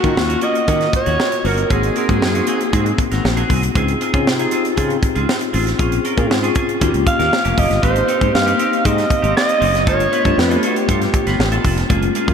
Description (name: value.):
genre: polished 1980s jazz-funk pop.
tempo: 118 BPM.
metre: 4/4.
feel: straight.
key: unclear.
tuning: A4 = 438 Hz.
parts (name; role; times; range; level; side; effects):
breathy alto saxophone; melody; 0.0-3.0, 7.1-11.6 s; Gb4 to F5; -19 LUFS; right 2 dB; diffuse ambient delay.
mellow tine electric piano; accompaniment; 0.0-12.3 s; Ab3 to Ab4; -21 LUFS; left 4 dB; fast stereo tremolo, analog chorus.
clean electric guitar; riff; 0.0-12.3 s; Bb3 to B4; -24 LUFS; right 2 dB; lush chorus.
sustaining fretless electric bass; bass; 0.0-12.3 s; F1 to Eb3; -20 LUFS; equal; analog chorus.
tight funk drum kit; drums; 0.0-12.3 s; hi-hat, kick drum, snare drum; -20 LUFS; equal; none.
room: wet cathedral reverb, RT60 4.8 s.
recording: dreamy mix soaked in reverb.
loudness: -14 LUFS.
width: side -7 dB against mid.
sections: 0.0-12.3 A section.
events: none.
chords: 0.0 Ebm7; 1.7 Ab7; 3.8 Dbmaj7; 5.8 Bbm7; 6.8 Eb7; 7.8 Abmaj7; 9.9 G9.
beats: 0.17 0.68 1.19 | 1.70 2.22 2.73 3.24 | 3.75 4.26 4.77 5.28 | 5.79 6.30 6.81 7.32 | 7.83 8.34 8.85 9.36 | 9.87 10.38 10.88 11.39 | 11.90.